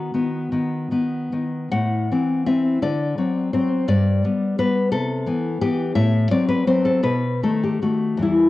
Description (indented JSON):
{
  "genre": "romantic piece for solo classical guitar",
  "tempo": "49-60 BPM (dotted quarters)",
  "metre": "6/8",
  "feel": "rubato",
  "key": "unclear",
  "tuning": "A4 = 440 Hz",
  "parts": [
    { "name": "nylon-string guitar", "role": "solo", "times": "0.0-8.5 s", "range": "E2 to F#5", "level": "-18 LUFS", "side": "left 2 dB", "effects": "cassette tape" }
  ],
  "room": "wet spring reverb, RT60 1.6 s, small room reverb",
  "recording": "home recording on cassette",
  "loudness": "-19 LUFS",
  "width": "side -16 dB against mid",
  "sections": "0.0-8.5 A section",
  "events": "none",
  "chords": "0.0 B; 1.7 Am; 2.8 D7; 3.9 G; 4.9 Cmaj7; 6.0 F#dim/A; 7.0 B7"
}